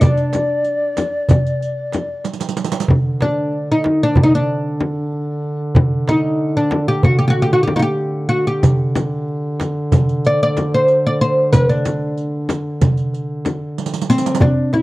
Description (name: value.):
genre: Turkish makam ensemble.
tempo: 188 BPM (eighths).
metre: 9/8.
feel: straight.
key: D makam hicaz.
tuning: A4 = 440 Hz.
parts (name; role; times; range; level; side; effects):
oud; melody; 0.0-14.8 s; C4 to D5; -16 LUFS; equal; none.
breathy ney; second line; 0.0-2.3 s; D5; -20 LUFS; left 2 dB; none.
darbuka; percussion; 0.0-14.8 s; none; -18 LUFS; right 1 dB; none.
frame drum; percussion; 0.0-14.8 s; none; -18 LUFS; left 1 dB; none.
riq; percussion; 0.0-2.9, 8.6-14.4 s; none; -25 LUFS; right 7 dB; none.
mellow duduk; drone; 2.9-14.5 s; D3; -23 LUFS; equal; none.
room: small room ambience.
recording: dry, close 1970s-style studio recording.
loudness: -15 LUFS.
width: side -18 dB against mid.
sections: 0.0-2.9 A section; 2.9-14.4 B section.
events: drum fill 2.3-2.9, 13.8-14.4.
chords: none.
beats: | 0.02 0.34 0.66 0.97 1.29 1.61 1.93 2.25 2.57 | 2.89 3.21 3.53 3.85 4.17 4.49 4.81 5.13 5.45 | 5.76 6.08 6.40 6.72 7.04 7.36 7.68 8.00 8.32 | 8.64 8.96 9.28 9.60 9.92 10.24 10.56 10.88 11.20 | 11.53 11.85 12.17 12.49 12.81 13.13 13.45 13.77 14.09 | 14.41 14.73.